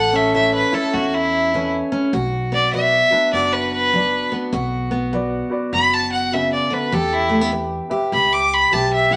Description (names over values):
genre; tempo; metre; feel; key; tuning
honky-tonk and classic country; 100 BPM; 4/4; swing 63% on 8ths; B minor; A4 = 440 Hz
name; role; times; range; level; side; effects
clear fiddle; melody; 0.0-9.2 s; E4 to D6; -20 LUFS; equal; none
picked steel-string acoustic guitar; accompaniment; 0.0-9.2 s; F#2 to A4; -24 LUFS; equal; none
upright bass; bass; 0.0-9.2 s; F#1 to E2; -31 LUFS; equal; none
dark upright piano; accompaniment; 0.3-9.2 s; E4 to E5; -31 LUFS; equal; none
room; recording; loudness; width
moderate studio reverb, RT60 0.8 s; none; -19 LUFS; mono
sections
0.0-9.2 A section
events
fiddle solo 0.0-9.2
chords
0.0 A; 2.1 Bm; 6.9 Em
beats
0.35 0.95 1.55 | 2.14 2.74 3.34 3.94 | 4.54 5.13 5.73 6.33 | 6.93 7.52 8.12 8.72